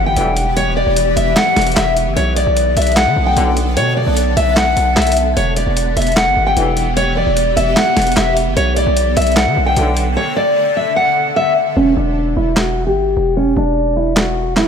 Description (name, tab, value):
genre	hip hop, trap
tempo	150 BPM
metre	4/4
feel	half-time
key	unclear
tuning	A4 = 439 Hz
part	fingerpicked steel-string acoustic guitar	melody	0.0-14.7 s	C#4 to G5	-15 LUFS	left 2 dB	low-pass filter
part	granular cloud pad	sustained chords	0.0-11.7 s	D3 to A4	-23 LUFS	right 2 dB	built-in reverb
part	distorted 808-style bass	bass	0.0-14.6 s	E1 to D3	-18 LUFS	equal	distortion
part	impact	sound effects	0.2-0.6 s	none	barely audible	none	none
part	dark brass ensemble	stabs	0.2-0.5, 3.4-3.7, 6.6-6.9, 9.8-10.1 s	B1 to E3	-23 LUFS	left 2 dB	none
part	dusty soul sampler-style drum kit	drums	0.2-10.1, 12.6-14.7 s	handclaps, hi-hat, snare drum	-19 LUFS	right 1 dB	none
room	light reverb, digital ambience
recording	none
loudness	-12 LUFS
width	side -7 dB against mid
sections	0.0-11.8 A section; 11.8-14.7 B section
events	impact 0.0-0.6; drums muted 10.2-11.8; hi-hats muted 11.8-14.7; filter sweep on steel-string acoustic guitar 11.8-14.7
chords	0.0 Em; 2.2 Bm7; 5.4 Em; 8.6 Bm7; 11.8 N.C.